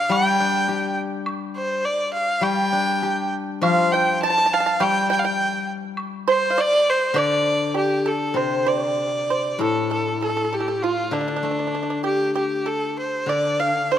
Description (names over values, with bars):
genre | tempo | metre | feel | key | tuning
chinese traditional, Chinese chamber ensemble | 94-106 BPM | 2/4 | rubato | D yu mode | A4 = 440 Hz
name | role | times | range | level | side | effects
clear erhu | melody | 0.0-14.0 s | D4 to A5 | -21 LUFS | equal | none
steel-string zither | accompaniment | 0.1-14.0 s | A2 to G4 | -25 LUFS | left 4 dB | none
woodblock | percussion | 0.1-7.9 s | none | -33 LUFS | equal | none
pipa | second line | 3.6-14.0 s | D4 to A5 | -25 LUFS | right 6 dB | none
room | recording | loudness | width
moderate concert hall reverb, RT60 2.4 s | close, detailed microphones | -19 LUFS | side -10 dB against mid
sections
0.0-8.4 A section; 8.4-14.0 B section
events
none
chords
none